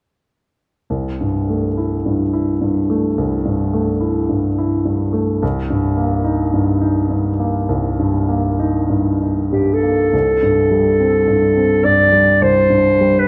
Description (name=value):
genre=classical, impressionist duo for clarinet and grand piano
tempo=47-54 BPM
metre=4/4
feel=rubato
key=unclear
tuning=A4 = 440 Hz
part: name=warm grand piano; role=accompaniment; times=0.9-13.3 s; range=C2 to E4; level=-18 LUFS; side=equal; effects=none
part: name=warm clarinet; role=melody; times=9.5-13.3 s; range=G4 to D5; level=-15 LUFS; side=equal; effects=none
room=moderate recital hall reverb, RT60 1.7 s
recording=none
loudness=-16 LUFS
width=mono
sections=0.9-10.1 A section; 10.1-13.3 B section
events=none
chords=0.9 C6; 5.4 Eb/C; 10.1 C5